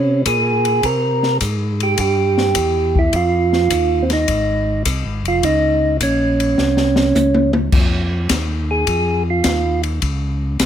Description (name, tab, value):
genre	soul jazz organ trio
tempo	104 BPM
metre	4/4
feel	swing 69% on 8ths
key	F minor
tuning	A4 = 440 Hz
part	percussive tonewheel organ	melody	0.0-9.8 s	C4 to Bb4	-17 LUFS	right 2 dB	slow rotary speaker, plate reverb
part	tonewheel organ	bass	0.0-10.7 s	F1 to C3	-20 LUFS	equal	overdrive, slow rotary speaker
part	open jazz drum kit	drums	0.3-10.7 s	crash cymbal, hi-hat, kick drum, ride cymbal, snare drum, toms	-21 LUFS	left 2 dB	none
room	light reverb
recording	none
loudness	-14 LUFS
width	side -9 dB against mid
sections	0.0-7.7 A section; 7.7-10.7 B section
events	drum fill 6.6-7.7; tonewheel organ solo 7.7-10.7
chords	0.0 Dbmaj7(no3); 0.8 C7; 3.1 Fm7; 5.4 Bbmadd11; 6.6 N.C.; 7.7 Fm7; 10.0 N.C.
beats	0.25 | 0.83 1.40 1.98 2.55 | 3.13 3.70 4.28 4.85 | 5.43 6.00 6.57 7.15 | 7.72 8.30 8.87 9.44 | 10.02 10.59